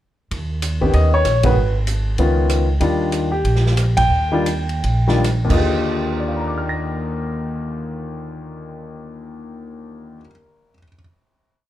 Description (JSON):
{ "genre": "jazz piano trio", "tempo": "134-193 BPM", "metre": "4/4", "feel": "swing 61% on 8ths", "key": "Eb major", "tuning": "A4 = 440 Hz", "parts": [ { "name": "upright bass", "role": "bass", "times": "0.3-10.2 s", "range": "Ab1 to Eb2", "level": "-19 LUFS", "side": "right 1 dB", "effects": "none" }, { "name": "swinging big-band drum kit", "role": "drums", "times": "0.3-5.6 s", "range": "crash cymbal, hi-hat, kick drum, ride cymbal, rim click, snare drum", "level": "-26 LUFS", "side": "right 2 dB", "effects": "none" }, { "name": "clear grand piano", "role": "melody", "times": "0.8-11.0 s", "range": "Eb2 to Bb6", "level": "-21 LUFS", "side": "left 2 dB", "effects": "plate reverb" } ], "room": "light reverb", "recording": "none", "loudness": "-16 LUFS", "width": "side -13 dB against mid", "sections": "0.3-5.7 A section; 5.7-9.2 final chord", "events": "band accent 1.4, 3.9; slowing down 2.8-5.7", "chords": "0.3 N.C.; 0.9 Eb7(no3); 1.6 Abm; 2.2 Db9; 2.8 Ebmaj9" }